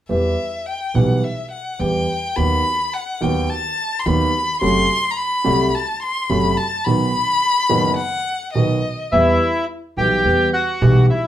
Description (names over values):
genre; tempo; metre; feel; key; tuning
tango; 107 BPM; 4/4; rubato; E minor; A4 = 443 Hz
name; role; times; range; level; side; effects
warm violin; second line; 0.1-9.1 s; D#5 to C6; -20 LUFS; left 2 dB; none
warm concert grand piano; accompaniment; 0.1-11.1 s; F#1 to G4; -18 LUFS; right 2 dB; none
upright bass; bass; 0.1-11.1 s; F#1 to E2; -21 LUFS; equal; none
bandoneon; melody; 9.1-11.3 s; E4 to G5; -18 LUFS; left 1 dB; none
room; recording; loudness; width
wet studio reverb, RT60 0.5 s; band playing live in one room; -16 LUFS; side -11 dB against mid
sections
0.1-9.1 A section; 9.1-11.3 B section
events
none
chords
0.1 Em; 2.4 B/D#; 4.6 F#dim; 6.9 B; 9.1 Em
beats
| 0.10 0.67 1.23 1.80 | 2.37 2.94 3.50 4.06 | 4.62 5.17 5.73 6.29 | 6.85 7.41 7.97 8.54 | 9.12 9.69 10.25 10.81